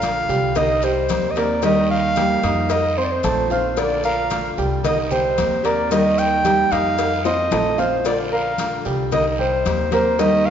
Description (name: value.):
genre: latin, Cuban son and guajira.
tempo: 112 BPM.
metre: 4/4.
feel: straight.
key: Bb major.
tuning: A4 = 440 Hz.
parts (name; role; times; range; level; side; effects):
clear clarinet; melody; 0.0-10.5 s; C5 to G5; -20 LUFS; equal; none.
nylon-string guitar; accompaniment; 0.0-10.5 s; D3 to G4; -25 LUFS; left 2 dB; none.
warm concert grand piano; arpeggios; 0.0-10.5 s; Eb3 to F6; -23 LUFS; right 3 dB; none.
upright bass; bass; 0.0-10.5 s; Bb1 to F2; -27 LUFS; left 2 dB; none.
congas; percussion; 0.0-10.5 s; none; -32 LUFS; left 3 dB; none.
cowbell and bongos; percussion; 0.0-10.5 s; none; -27 LUFS; left 5 dB; none.
guiro; percussion; 0.0-10.5 s; none; -36 LUFS; right 1 dB; none.
maracas; percussion; 0.0-10.5 s; none; -40 LUFS; left 6 dB; none.
room: wet scoring stage reverb, RT60 1.7 s.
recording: recorded in a church or concert hall, nothing above 7.6 kHz.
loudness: -17 LUFS.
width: side -8 dB against mid.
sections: 0.0-10.5 A section.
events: drum fill 7.3-8.1.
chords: 0.0 Bbmaj7; 0.6 Cm7; 1.6 Eb; 2.7 F7; 3.8 Bbmaj7; 4.8 Cm7; 5.9 Eb; 7.0 F7; 8.1 Bbmaj7; 9.1 Cm7.